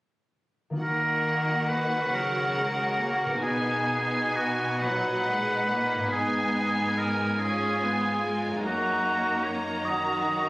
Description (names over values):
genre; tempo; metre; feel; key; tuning
classical, slow romantic movement for symphony orchestra; 42-50 BPM (dotted quarters); 6/8; rubato; Eb minor; A4 = 440 Hz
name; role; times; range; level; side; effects
concert harp; arpeggios; 0.7-10.5 s; Gb2 to Bb4; -36 LUFS; left 1 dB; none
rich chamber violin section; melody; 0.8-10.5 s; Gb5 to Bb5; -33 LUFS; left 1 dB; none
clear oboe; second line; 0.8-10.5 s; Gb4 to Eb5; -27 LUFS; equal; none
rich chamber violin section; second line; 0.8-10.5 s; D#4 to Gb4; -35 LUFS; equal; none
rich chamber viola section; accompaniment; 0.8-10.5 s; Eb3 to Db4; -33 LUFS; equal; none
rich studio cello section; bass; 0.8-10.5 s; Gb2 to Eb3; -34 LUFS; equal; none
room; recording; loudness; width
moderate scoring stage reverb, RT60 1.9 s; recorded on a phone in the room, studio reverb, compression; -24 LUFS; side -19 dB against mid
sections
0.8-10.5 A section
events
none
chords
0.8 Ebm; 3.4 Bmaj7; 6.1 Abm; 8.6 Ebm/Gb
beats
| 0.80 2.13 | 3.43 4.83 | 6.12 7.39 | 8.63 9.85